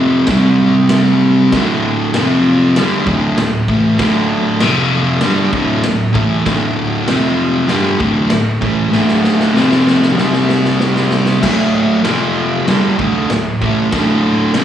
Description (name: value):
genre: garage rock duo or trio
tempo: 97 BPM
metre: 4/4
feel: straight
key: unclear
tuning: A4 = 439 Hz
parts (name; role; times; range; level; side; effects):
- fuzz guitar; riff; 0.0-14.6 s; D2 to C4; -12 LUFS; equal; distortion, slapback echo
- raw garage drum kit; drums; 0.3-14.6 s; crash cymbal, kick drum, snare drum; -18 LUFS; equal; none
room: light reverb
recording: live gig heard through the venue's PA, club reverb, small room reverb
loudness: -11 LUFS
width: side -10 dB against mid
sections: 0.0-11.4 A section; 11.4-14.6 B section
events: drum fill 8.9-11.4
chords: 0.3 C5; 1.5 D5; 2.1 F5; 2.7 D5; 4.6 F5; 5.2 D5; 7.1 F5; 7.7 D5; 9.6 F5; 10.2 C5; 11.4 D5; 12.0 F5; 12.7 D5